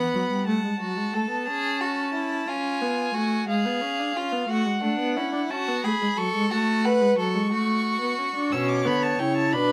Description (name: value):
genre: classical, baroque-style fugue for string quartet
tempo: 60 BPM (dotted quarters)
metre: 12/8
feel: straight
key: unclear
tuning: A4 = 440 Hz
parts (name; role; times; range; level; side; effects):
- warm violin; melody; 0.0-9.7 s; E#5 to E6; -31 LUFS; equal; none
- rich violin; second line; 0.0-9.7 s; D4 to F#5; -31 LUFS; equal; none
- rich viola; accompaniment; 0.0-9.7 s; F#3 to E4; -28 LUFS; equal; none
- warm cello; bass; 0.0-0.5, 8.5-9.7 s; B2 to G3; -31 LUFS; equal; none
room: moderate studio reverb, RT60 0.7 s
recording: none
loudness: -25 LUFS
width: mono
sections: 0.0-9.7 A section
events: none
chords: 0.5 F#m; 2.5 C#; 4.5 F#m; 8.5 Bm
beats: | 0.47 1.48 2.48 3.48 | 4.49 5.50 6.51 7.51 | 8.52 9.53